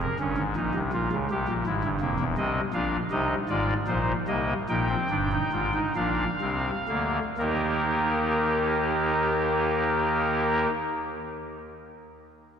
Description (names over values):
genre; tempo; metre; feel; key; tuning
classical, baroque-style 3-part fugue for pipe organ; 40-56 BPM (dotted quarters); 6/8; straight; Eb major; A4 = 440 Hz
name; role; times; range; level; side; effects
pipe organ, soft reed; solo; 0.0-10.7 s; E1 to G5; -24 LUFS; equal; none
room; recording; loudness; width
wet cathedral reverb, RT60 4.1 s; none; -24 LUFS; side -7 dB against mid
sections
0.0-7.4 A section; 7.4-10.3 B section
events
slowing down 1.3-7.4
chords
0.2 Gdim; 1.3 C; 2.4 Cm; 3.5 Ab; 4.7 Bb7sus4; 6.0 Bb; 7.4 Eb